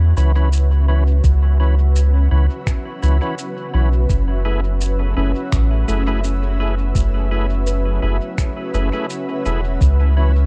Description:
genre	ambient dub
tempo	84 BPM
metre	4/4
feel	swing 53% on 16ths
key	F# minor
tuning	A4 = 439 Hz
part	granular cloud pad	sustained chords	0.0-10.5 s	C#4 to E5	-29 LUFS	equal	built-in reverb
part	handpan	arpeggios	0.0-0.2, 5.2-9.4 s	A3 to B4	-33 LUFS	equal	tape echo
part	soft dub sub bass	bass	0.0-10.5 s	E1 to E2	-17 LUFS	equal	none
part	overdriven tonewheel organ	stabs	0.2-10.3 s	E3 to B4	-30 LUFS	equal	chorus vibrato, low-pass filter, dub echo
part	electronic shaker and finger snaps	drums	0.2-10.0 s	none	-37 LUFS	equal	dub echo
part	electronic kick drum	drums	1.2-10.0 s	none	-21 LUFS	equal	none
room	digital ambience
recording	dark, warm production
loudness	-18 LUFS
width	mono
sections	0.0-10.5 A section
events	filter sweep on tonewheel organ 0.0-10.5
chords	0.0 C#m7; 4.1 F#m11; 9.8 C#m7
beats	0.53 | 1.24 1.96 2.67 3.38 | 4.10 4.81 5.53 6.24 | 6.96 7.67 8.38 9.10 | 9.81

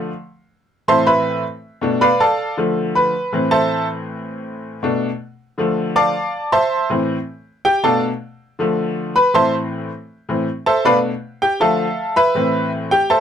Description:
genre	latin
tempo	160 BPM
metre	4/4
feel	straight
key	A minor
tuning	A4 = 442 Hz
part	bright upright piano	solo	0.0-13.2 s	A2 to D6	-16 LUFS	equal	none
room	light reverb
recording	dark, warm production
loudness	-16 LUFS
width	side -8 dB against mid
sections	0.0-13.2 A section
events	upright piano solo 0.0-13.2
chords	0.3 Amadd9; 1.8 Bm7b5; 2.6 Dm; 3.3 Amadd9; 4.8 Bm7; 5.6 Dm; 6.3 Am; 7.8 Bm7b5; 8.6 Dm; 9.3 Am; 10.9 Bm7b5; 11.6 Dmadd9; 12.4 Amadd9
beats	0.32 0.70 | 1.07 1.45 1.82 2.20 | 2.58 2.95 3.33 3.70 | 4.08 4.46 4.83 5.21 | 5.58 5.96 6.34 6.71 | 7.09 7.47 7.84 8.22 | 8.60 8.97 9.35 9.72 | 10.10 10.48 10.85 11.23 | 11.60 11.98 12.35 12.73 | 13.11

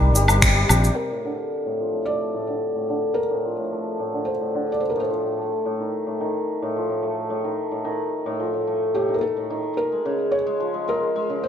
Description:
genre	folktronica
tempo	109 BPM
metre	4/4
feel	straight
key	Bb major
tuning	A4 = 441 Hz
part	felt-muted upright piano	melody	0.0-5.1, 8.9-11.5 s	G4 to D5	-27 LUFS	equal	digital delay
part	hammered dulcimer	arpeggios	0.0-11.5 s	A2 to A3	-24 LUFS	left 1 dB	low-pass filter, digital delay
part	fingered electric bass	bass	0.0-0.9 s	G1 to C2	-18 LUFS	equal	none
part	electronic cabasa, woodblock and finger snaps	drums	0.2-0.9 s	none	-20 LUFS	left 1 dB	none
part	electronic kick drum	drums	0.4-0.5 s	none	-21 LUFS	equal	none
room	light reverb, digital ambience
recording	none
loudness	-21 LUFS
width	side -8 dB against mid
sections	1.0-11.5 A section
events	band accent 0.4; filter sweep on hammered dulcimer 1.0-11.5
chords	0.0 Cm7; 1.0 Bbmaj7; 5.4 F7; 9.8 Db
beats	0.42 | 0.97 1.52 2.07 2.62 | 3.17 3.72 4.27 4.82 | 5.37 5.92 6.47 7.03 | 7.58 8.13 8.68 9.23 | 9.78 10.33 10.88 11.43

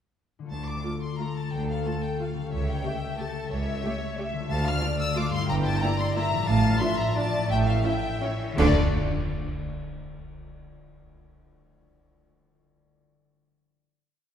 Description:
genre	classical, orchestral ballroom waltz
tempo	158-198 BPM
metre	3/4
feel	rubato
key	D minor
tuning	A4 = 440 Hz
part	concert harp	arpeggios	0.4-8.8 s	G2 to F5	-31 LUFS	left 3 dB	none
part	rich studio violin section	melody	0.5-8.8 s	D5 to F6	-32 LUFS	left 4 dB	none
part	rich studio cello section	bass	0.5-8.8 s	C#2 to D3	-32 LUFS	right 2 dB	none
part	rich studio double bass section	bass	0.5-8.8 s	G1 to D2	-30 LUFS	right 2 dB	none
part	warm studio violin section	second line	0.8-8.8 s	F4 to G5	-32 LUFS	left 1 dB	none
part	warm studio viola section	accompaniment	0.8-8.8 s	A3 to G4	-34 LUFS	right 1 dB	none
part	cymbal swell, clash cymbals and concert bass drum	percussion	6.5-9.3 s	none	-31 LUFS	right 1 dB	none
room	wet concert hall reverb, RT60 2.3 s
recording	heard from further back in the room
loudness	-24 LUFS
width	side -9 dB against mid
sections	0.5-8.6 A section; 8.6-9.7 final chord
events	band accent 8.6-8.9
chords	0.5 Dm; 2.5 A7/C#; 4.5 Dm; 5.5 Edim/G; 6.5 Dm/A; 7.5 A7; 8.6 Dm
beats	| 0.51 0.85 1.20 | 1.52 1.85 2.20 | 2.52 2.85 3.19 | 3.51 3.84 4.18 | 4.50 4.82 5.16 | 5.49 5.81 6.16 | 6.47 6.80 7.16 | 7.50 7.84 8.22 | 8.58 8.94

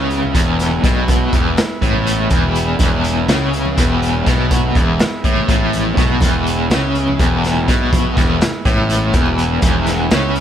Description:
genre	psychedelic rock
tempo	246 BPM (eighths)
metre	7/8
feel	straight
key	E major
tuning	A4 = 436 Hz
part	overdriven combo organ	sustained chords	0.0-10.4 s	G#3 to E4	-26 LUFS	right 4 dB	spring reverb
part	overdriven electric guitar	riff	0.0-10.4 s	E2 to C#3	-17 LUFS	left 1 dB	tremolo
part	fuzz fingered electric bass	bass	0.0-10.4 s	E1 to C#2	-20 LUFS	equal	overdrive
part	raw garage drum kit	drums	0.1-10.4 s	hi-hat, kick drum, snare drum	-17 LUFS	equal	none
part	congas	percussion	0.2-10.3 s	none	-28 LUFS	right 2 dB	none
room	light reverb, small room ambience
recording	none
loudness	-13 LUFS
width	side -10 dB against mid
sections	0.0-10.4 A section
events	drum fill 5.6-6.2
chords	0.0 E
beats	0.10 0.35 0.59 0.84 | 1.08 1.33 1.57 1.82 2.06 2.31 2.55 | 2.80 3.04 3.29 3.53 3.78 4.02 4.26 | 4.51 4.75 5.00 5.24 5.49 5.73 5.97 | 6.22 6.46 6.71 6.95 7.19 7.44 7.68 | 7.92 8.17 8.41 8.65 8.90 9.14 9.38 | 9.62 9.87 10.11 10.35

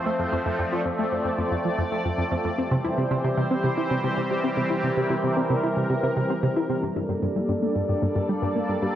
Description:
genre	ambient, sequencer-driven space music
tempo	113 BPM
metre	4/4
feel	straight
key	unclear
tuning	A4 = 441 Hz
part	sweeping resonant pad	sustained chords	0.0-9.0 s	E3 to D5	-25 LUFS	equal	chorus, tremolo
part	tight sequenced synth	riff	0.1-8.9 s	F2 to E4	-26 LUFS	equal	chorus, tape echo
room	wet plate reverb, RT60 3.3 s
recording	worn, warbling old tape, cassette tape, warbly pitch drift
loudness	-22 LUFS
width	side -11 dB against mid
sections	0.0-9.0 A section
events	none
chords	0.0 F; 2.6 C; 6.8 Gmadd9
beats	| 0.46 0.99 1.52 2.05 | 2.58 3.11 3.64 4.17 | 4.71 5.24 5.77 6.30 | 6.83 7.36 7.89 8.42 | 8.95

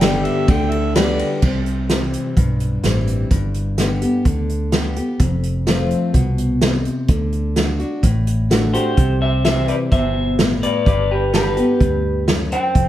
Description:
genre	honky-tonk and classic country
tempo	127 BPM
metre	4/4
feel	straight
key	G major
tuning	A4 = 440 Hz
part	electric guitar through a small old amp	melody	0.0-1.1, 8.7-12.9 s	G4 to G5	-21 LUFS	left 1 dB	none
part	overdriven harmonica	second line	0.0-1.3 s	G4 to G5	-25 LUFS	right 3 dB	none
part	picked steel-string acoustic guitar	accompaniment	0.0-12.9 s	F2 to G4	-21 LUFS	left 2 dB	none
part	vintage muted fingered electric bass	bass	0.0-12.9 s	F1 to D2	-21 LUFS	equal	none
part	unplugged drum kit	drums	0.0-12.9 s	crash cymbal, hi-hat, kick drum, ride cymbal, snare drum	-19 LUFS	right 1 dB	none
room	light reverb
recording	heard from further back in the room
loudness	-15 LUFS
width	side -13 dB against mid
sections	0.0-1.4 A section; 1.4-9.0 B section; 9.0-12.9 C section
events	none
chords	0.0 G; 1.4 C; 3.3 G; 5.2 F; 7.1 D; 9.0 C; 10.9 G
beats	0.01 0.48 0.95 | 1.42 1.90 2.37 2.84 | 3.31 3.78 4.26 4.73 | 5.20 5.67 6.14 6.62 | 7.09 7.56 8.03 8.51 | 8.98 9.45 9.92 10.39 | 10.87 11.34 11.81 12.28 | 12.75

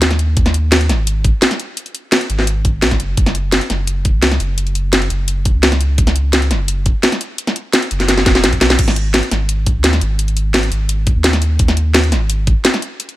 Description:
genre	liquid drum and bass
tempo	171 BPM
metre	4/4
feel	straight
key	G# minor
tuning	A4 = 437 Hz
part	warm sub bass	bass	0.0-12.5 s	E1 to D#2	-16 LUFS	equal	none
part	drum and bass drum kit	drums	0.0-13.2 s	crash cymbal, hi-hat, snare drum	-15 LUFS	equal	none
part	electronic kick drum	drums	0.4-12.5 s	none	-16 LUFS	equal	none
room	little or no reverb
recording	none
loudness	-13 LUFS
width	side -16 dB against mid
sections	0.0-13.2 A section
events	drum fill 8.1-8.8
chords	none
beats	0.02 | 0.37 0.72 1.07 1.42 | 1.77 2.12 2.47 2.82 | 3.17 3.52 3.88 4.23 | 4.58 4.93 5.28 5.63 | 5.98 6.33 6.68 7.03 | 7.38 7.74 8.09 8.44 | 8.79 9.14 9.49 9.84 | 10.19 10.54 10.89 11.24 | 11.60 11.95 12.30 12.65 | 13.00

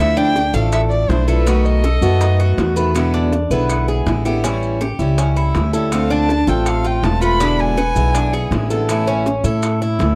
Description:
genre	latin, Cuban son and guajira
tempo	162 BPM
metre	4/4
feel	straight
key	unclear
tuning	A4 = 441 Hz
part	dark violin	melody	0.0-2.8, 5.9-8.7 s	B4 to B5	-24 LUFS	equal	none
part	picked steel-string acoustic guitar	accompaniment	0.0-10.2 s	B2 to F#4	-23 LUFS	equal	none
part	upright bass	bass	0.0-10.2 s	E1 to A2	-20 LUFS	equal	none
part	Cuban tres	arpeggios	0.2-10.2 s	C#4 to B4	-24 LUFS	equal	none
part	maracas	percussion	0.2-10.2 s	none	-36 LUFS	equal	none
part	bongos	percussion	0.4-10.2 s	none	-28 LUFS	equal	none
part	claves	percussion	0.7-9.8 s	none	-38 LUFS	equal	none
room	small room ambience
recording	dry, close 1970s-style studio recording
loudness	-17 LUFS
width	mono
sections	0.0-10.2 A section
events	none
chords	0.0 Dmadd9; 1.5 B7; 3.0 E7; 4.4 A7; 5.9 Dm7; 7.4 E7; 8.9 A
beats	0.35 0.72 1.10 | 1.47 1.84 2.21 2.58 | 2.95 3.33 3.70 4.07 | 4.44 4.81 5.18 5.55 | 5.92 6.29 6.66 7.03 | 7.40 7.78 8.15 8.52 | 8.89 9.26 9.63 10.00

